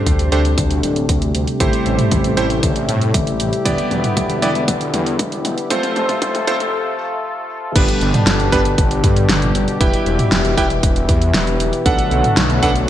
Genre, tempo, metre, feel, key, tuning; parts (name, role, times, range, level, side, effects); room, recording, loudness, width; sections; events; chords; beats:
synthwave; 117 BPM; 4/4; straight; G major; A4 = 440 Hz
warm analog pad; sustained chords; 0.0-12.9 s; B2 to A4; -20 LUFS; left 2 dB; chorus, sidechain pumping
clear electric grand piano; stabs; 0.0-12.7 s; G3 to G5; -21 LUFS; right 2 dB; digital delay
wide detuned saw bass; bass; 0.1-12.9 s; D1 to A2; -20 LUFS; equal; chorus, tube saturation, sidechain pumping
electronic kick drum; drums; 0.1-12.7 s; -18 LUFS; equal
pop drum kit; drums; 0.1-12.9 s; crash cymbal, hi-hat, snare drum, toms; -20 LUFS; equal; gated reverb
moderate plate reverb, RT60 2.0 s; bright 1980s-style digital production, high-pass filter; -14 LUFS; side -11 dB against mid
0.0-7.8 A section; 7.8-12.9 B section
drum fill 0.0-6.7; filter sweep 0.0-7.8; break 6.7-7.8
0.0 D7sus4; 1.6 Am7; 3.7 Em7; 5.7 F; 7.8 G; 9.8 Em; 11.9 Bm7
0.06 0.58 1.09 | 1.60 2.12 2.63 3.14 | 3.65 4.17 4.68 5.19 | 5.71 6.22 6.73 7.24 | 7.76 8.27 8.78 9.29 | 9.81 10.32 10.83 11.35 | 11.86 12.37 12.88